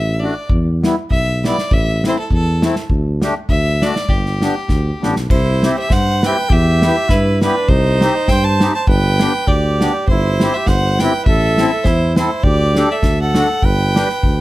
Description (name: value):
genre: alpine folk, alpine dance band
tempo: 101 BPM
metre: 2/4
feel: swing 55% on 8ths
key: G major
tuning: A4 = 439 Hz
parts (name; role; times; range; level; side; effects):
- clear fiddle; melody; 0.0-14.4 s; G4 to A5; -20 LUFS; equal; none
- dark tuba; bass; 0.0-14.4 s; G1 to G2; -17 LUFS; equal; none
- accordion; accompaniment; 0.2-14.1 s; G3 to B4; -20 LUFS; left 1 dB; none
- natural country drum kit; drums; 0.5-14.4 s; crash cymbal, kick drum, snare drum; -18 LUFS; equal; none
- clear trumpet; second line; 5.3-14.4 s; D4 to C5; -22 LUFS; right 5 dB; none
room: little or no reverb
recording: close, detailed microphones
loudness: -13 LUFS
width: side -17 dB against mid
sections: 0.0-5.3 A section; 5.3-14.4 B section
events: drum fill 4.7-5.3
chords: 0.5 Em; 1.7 Am; 2.9 Dsus4; 3.5 D; 4.1 G; 5.3 C; 6.5 Em; 7.7 Cm; 8.9 G; 10.1 C/G; 11.3 Am; 12.4 Dsus4; 13.0 D; 13.6 G